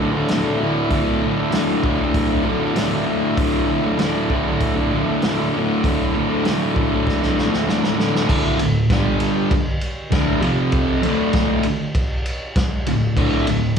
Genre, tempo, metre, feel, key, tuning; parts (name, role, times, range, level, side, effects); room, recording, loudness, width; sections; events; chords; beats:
garage rock duo or trio; 98 BPM; 4/4; straight; A4 = 441 Hz
fuzz guitar; riff; 0.0-13.7 s; D2 to G3; -18 LUFS; equal; distortion, slapback echo
vintage drum kit; drums; 0.3-13.8 s; crash cymbal, hi-hat, kick drum, ride cymbal, snare drum; -22 LUFS; equal
moderate club reverb, RT60 0.6 s; live gig heard through the venue's PA, club reverb; -17 LUFS; side -7 dB against mid
0.0-8.3 A section; 8.3-13.8 B section
drum fill 7.1-8.3
0.0 D5; 8.9 G5; 9.5 D5; 10.4 F5; 11.0 D5
0.29 | 0.91 1.52 2.14 2.76 | 3.37 3.99 4.61 5.22 | 5.84 6.45 7.07 7.68 | 8.29 8.91 9.52 10.13 | 10.74 11.35 11.95 12.56 | 13.17 13.77